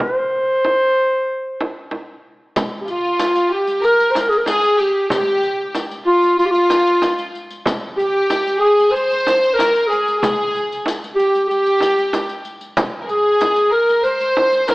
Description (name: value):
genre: Arabic maqam ensemble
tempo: 94 BPM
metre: 4/4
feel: straight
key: C maqam hijaz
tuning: A4 = 441 Hz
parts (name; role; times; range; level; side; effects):
- dark clarinet; melody; 0.0-14.7 s; F4 to C5; -15 LUFS; equal; none
- frame drum; percussion; 0.0-14.7 s; none; -23 LUFS; right 1 dB; none
- riq; percussion; 2.6-14.7 s; none; -30 LUFS; left 2 dB; none
- warm studio violin section; second line; 2.9-14.7 s; F4 to C5; -21 LUFS; equal; none
room: moderate recital hall reverb, RT60 1.7 s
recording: AM radio sound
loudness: -15 LUFS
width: side -22 dB against mid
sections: 0.0-2.6 A section; 2.6-14.7 B section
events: none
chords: none